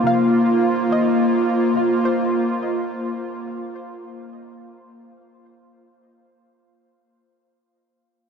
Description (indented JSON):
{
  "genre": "ambient",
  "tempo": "free time",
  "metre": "none",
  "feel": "none",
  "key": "unclear",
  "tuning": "A4 = 439 Hz",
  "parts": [
    { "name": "airy breathy pad", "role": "sustained chords", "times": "0.0-7.1 s", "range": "Bb3 to F5", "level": "-19 LUFS", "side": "equal", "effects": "chorus" },
    { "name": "soft round pluck", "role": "arpeggios", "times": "0.0-5.9 s", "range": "C3 to F5", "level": "-27 LUFS", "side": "left 1 dB", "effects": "analog chorus, ping-pong delay" }
  ],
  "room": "wet huge ambient reverb, RT60 8.8 s",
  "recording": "dark, warm production",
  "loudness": "-17 LUFS",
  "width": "side -6 dB against mid",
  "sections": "0.0-7.1 A section",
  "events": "fade-out 0.0-7.1",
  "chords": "0.0 Bbsus2"
}